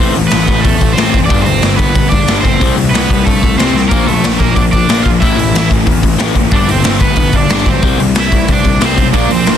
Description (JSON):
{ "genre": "punk rock", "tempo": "184 BPM", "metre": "4/4", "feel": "straight", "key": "unclear", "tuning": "A4 = 440 Hz", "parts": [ { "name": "crunchy overdriven guitar", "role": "melody", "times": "0.0-9.6 s", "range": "A3 to F5", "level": "-16 LUFS", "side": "right 4 dB", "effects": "ping-pong delay" }, { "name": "crunchy overdriven guitar", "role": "riff", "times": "0.0-9.6 s", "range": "G2 to C4", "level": "-15 LUFS", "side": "left 8 dB", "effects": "none" }, { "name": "fuzz picked electric bass", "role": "bass", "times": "0.0-9.6 s", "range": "F#1 to G2", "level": "-18 LUFS", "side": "right 1 dB", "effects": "overdrive" }, { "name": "raw garage drum kit", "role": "drums", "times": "0.2-9.5 s", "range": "hi-hat, kick drum, snare drum", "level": "-12 LUFS", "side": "equal", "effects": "none" }, { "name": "overdriven electric guitar", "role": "riff", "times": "9.1-9.6 s", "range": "Bb2 to Bb3", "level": "-16 LUFS", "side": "right 16 dB", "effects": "none" } ], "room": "little or no reverb", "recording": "dense, heavily limited modern master", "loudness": "-9 LUFS", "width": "side -9 dB against mid", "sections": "0.0-9.6 A section", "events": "drum fill 3.7", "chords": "0.0 Am; 1.3 G; 2.6 C5; 3.9 Bb; 5.2 A5; 6.5 G; 7.8 C" }